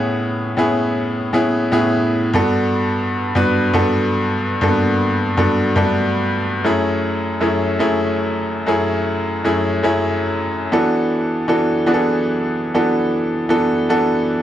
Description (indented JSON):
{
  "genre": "disco",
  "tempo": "118 BPM",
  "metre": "4/4",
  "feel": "straight",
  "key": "unclear",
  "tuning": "A4 = 441 Hz",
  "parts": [
    { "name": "bright baby grand piano", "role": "solo", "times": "0.0-14.4 s", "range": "F#2 to B4", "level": "-16 LUFS", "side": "equal", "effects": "none" }
  ],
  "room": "wet large studio reverb, RT60 0.9 s",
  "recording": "dark, warm production",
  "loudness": "-16 LUFS",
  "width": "side -11 dB against mid",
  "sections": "0.0-14.4 A section",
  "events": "none",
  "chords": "0.0 Amaj9; 2.3 Gmaj9; 6.6 F#m9; 10.7 E9sus4",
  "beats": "0.06 | 0.57 1.07 1.58 2.09 | 2.59 3.10 3.61 4.11 | 4.62 5.13 5.63 6.14 | 6.65 7.16 7.66 8.17 | 8.68 9.19 9.70 10.21 | 10.71 11.22 11.73 12.24 | 12.75 13.26 13.77 14.28"
}